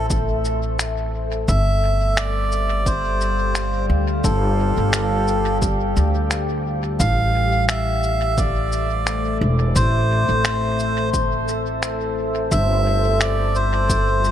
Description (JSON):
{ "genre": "ambient dub", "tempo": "87 BPM", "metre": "4/4", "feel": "swing 54% on 16ths", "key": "A minor", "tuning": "A4 = 440 Hz", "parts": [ { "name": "melodica", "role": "melody", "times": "0.0-14.3 s", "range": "A4 to F5", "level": "-23 LUFS", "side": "right 1 dB", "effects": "dub echo" }, { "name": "deep dark ambient pad", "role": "sustained chords", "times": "0.0-14.3 s", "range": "G3 to F5", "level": "-25 LUFS", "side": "left 2 dB", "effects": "chorus, built-in reverb" }, { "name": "upright bass", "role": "bass", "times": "0.0-14.3 s", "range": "E1 to D2", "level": "-21 LUFS", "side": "equal", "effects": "none" }, { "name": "electronic kick drum", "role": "drums", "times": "0.1-14.0 s", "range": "none", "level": "-24 LUFS", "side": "equal", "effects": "none" }, { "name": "electronic shaker and finger snaps", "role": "drums", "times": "0.1-14.3 s", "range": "none", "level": "-27 LUFS", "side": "equal", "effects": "dub echo" } ], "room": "moderate spring reverb, RT60 2.6 s", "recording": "none", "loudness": "-18 LUFS", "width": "side -10 dB against mid", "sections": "0.0-14.3 A section", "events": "none", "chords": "0.0 Am; 1.5 G7sus4; 7.0 Am; 12.5 G7sus4" }